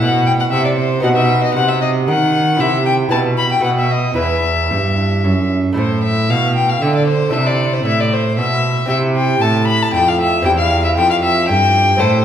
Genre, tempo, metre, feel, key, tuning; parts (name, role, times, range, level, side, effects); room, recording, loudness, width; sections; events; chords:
classical, baroque-style sonata movement with continuo; 116 BPM; 3/4; straight; E minor, A minor from 5.8 s; A4 = 440 Hz
warm violin; melody; 0.0-12.2 s; C5 to B5; -16 LUFS; left 3 dB
lute; accompaniment; 0.0-12.2 s; E2 to B4; -20 LUFS; right 1 dB
rich cello; bass; 0.0-12.2 s; E2 to D#3; -17 LUFS; right 2 dB
wet recital hall reverb, RT60 1.6 s; heard from further back in the room; -13 LUFS; side -9 dB against mid
0.0-5.8 A section; 5.8-12.2 A section
0.0 Am; 1.0 B; 2.6 C; 3.1 E5/B; 3.6 B7; 4.2 Em; 5.8 A5; 7.3 Am; 8.9 C; 10.5 C/E